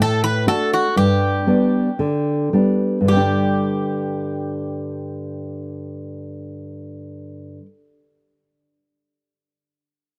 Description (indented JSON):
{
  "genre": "greek folk",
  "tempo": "104-126 BPM",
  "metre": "4/4",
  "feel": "straight",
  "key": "G major",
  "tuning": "A4 = 441 Hz",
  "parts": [
    { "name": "Greek bouzouki", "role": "melody", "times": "0.0-7.7 s", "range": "F#4 to B4", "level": "-25 LUFS", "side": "equal", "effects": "none" },
    { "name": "nylon-string guitar", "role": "accompaniment", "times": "0.0-7.7 s", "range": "G2 to F#4", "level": "-22 LUFS", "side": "equal", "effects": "none" }
  ],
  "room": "little or no reverb",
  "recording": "dry, close 1970s-style studio recording",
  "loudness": "-19 LUFS",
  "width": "mono",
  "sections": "0.0-3.1 A section; 3.1-7.7 B section",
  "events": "slowing down 0.0-3.1",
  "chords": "0.0 D; 1.0 G; 3.1 G5"
}